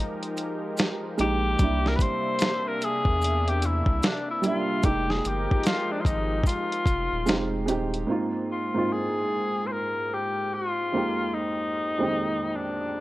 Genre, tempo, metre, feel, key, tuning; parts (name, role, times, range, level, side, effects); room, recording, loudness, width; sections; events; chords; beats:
lo-fi hip hop; 74 BPM; 4/4; swing 61% on 16ths; F dorian; A4 = 439 Hz
dark upright piano; accompaniment; 0.0-13.0 s; F2 to E5; -29 LUFS; right 3 dB; low-pass filter
warm analog pad; sustained chords; 0.0-8.0 s; C3 to E5; -34 LUFS; equal; chorus, low-pass filter
dusty soul sampler-style drum kit; drums; 0.0-8.1 s; hi-hat, kick drum, snare drum; -25 LUFS; equal
maracas; percussion; 0.4-7.9 s; -44 LUFS; equal
warm tenor saxophone; melody; 1.2-13.0 s; D4 to C5; -28 LUFS; left 2 dB; low-pass filter
saturated sub bass; bass; 1.2-8.1 s; Eb1 to E2; -28 LUFS; equal
light reverb, studio ambience; cassette tape; -24 LUFS; side -17 dB against mid
0.0-8.1 A section; 8.1-13.0 B section
0.0 Fm11; 1.6 C9; 4.8 Fm11; 7.3 Fm9; 8.1 Ab69; 10.9 Fm11
0.78 | 1.59 2.41 3.22 4.03 | 4.84 5.65 6.46 7.27 | 8.08 8.89 9.70 10.51 | 11.32 12.13 12.95